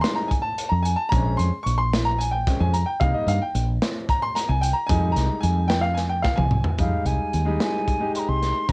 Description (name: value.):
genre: progressive instrumental, band music in an uneven meter.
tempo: 222 BPM (eighths).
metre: 7/8.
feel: straight.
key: F minor.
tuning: A4 = 442 Hz.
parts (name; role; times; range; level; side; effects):
clear baby grand piano; accompaniment; 0.0-8.7 s; G3 to Db6; -24 LUFS; equal; cassette tape.
crunchy breakbeat drum kit; drums; 0.0-8.7 s; hi-hat, kick drum, snare drum, toms; -25 LUFS; equal; cassette tape.
woody fretless electric bass; bass; 0.7-8.7 s; Bb1 to G2; -22 LUFS; equal; none.
reedy wooden flute; melody; 6.8-8.7 s; F5 to C6; -26 LUFS; equal; cassette tape, analog delay.
room: little or no reverb.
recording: home recording on cassette.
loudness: -20 LUFS.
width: side -28 dB against mid.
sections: 0.0-6.8 A section; 6.8-8.7 B section.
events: grand piano solo 0.0-6.8; drum fill 6.3-6.8.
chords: 0.0 Fm7; 1.1 Bbm7; 3.0 Cm7; 4.9 Fm7; 6.8 Fm7 (rootless).